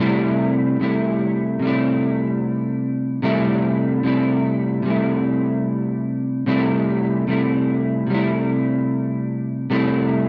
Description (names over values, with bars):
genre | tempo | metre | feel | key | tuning
indie pop | 74 BPM | 4/4 | straight | C major | A4 = 441 Hz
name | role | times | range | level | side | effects
electric guitar at the edge of break-up | solo | 0.0-10.3 s | C3 to E4 | -20 LUFS | equal | analog chorus, vibrato effect
room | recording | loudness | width
moderate studio reverb, RT60 0.6 s | rough home demo mix | -20 LUFS | mono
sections
0.0-10.3 A section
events
none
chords
0.0 C6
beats
0.80 1.61 2.42 | 3.23 4.04 4.85 5.66 | 6.47 7.28 8.09 8.90 | 9.71